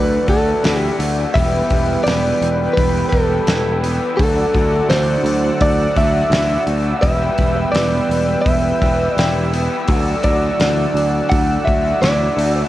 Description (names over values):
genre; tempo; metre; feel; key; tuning
rock, shoegaze and dream pop; 84 BPM; 4/4; straight; D major; A4 = 441 Hz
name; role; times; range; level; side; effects
direct-recorded clean electric guitar; melody; 0.0-12.5 s; A4 to F#5; -19 LUFS; equal; cassette tape, tape echo
warm analog pad; sustained chords; 0.0-12.7 s; B4 to E6; -23 LUFS; equal; chorus, cassette tape
clean electric guitar; arpeggios; 0.0-12.7 s; F#3 to E4; -29 LUFS; right 7 dB; analog chorus, cassette tape, tape echo
electric guitar at the edge of break-up; riff; 0.0-12.7 s; D3 to E4; -27 LUFS; right 8 dB; reverse reverb, cassette tape
raw garage guitar; riff; 0.0-12.7 s; E2 to G4; -26 LUFS; left 8 dB; overdrive, wide subtle chorus, cassette tape
picked electric bass; bass; 0.0-12.6 s; E1 to D2; -20 LUFS; equal; none
loose indie drum kit; drums; 0.3-12.6 s; hi-hat, kick drum, snare drum; -20 LUFS; equal; none
room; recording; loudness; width
light reverb, studio reverb; home recording on cassette, faint mains hum; -14 LUFS; side -14 dB against mid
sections
0.0-12.7 A section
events
none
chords
0.0 Dadd9; 1.3 Em; 4.2 Dadd9; 7.0 Em; 9.9 Dadd9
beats
0.63 | 1.34 2.05 2.77 3.48 | 4.19 4.90 5.62 6.33 | 7.04 7.75 8.46 9.18 | 9.89 10.60 11.31 12.03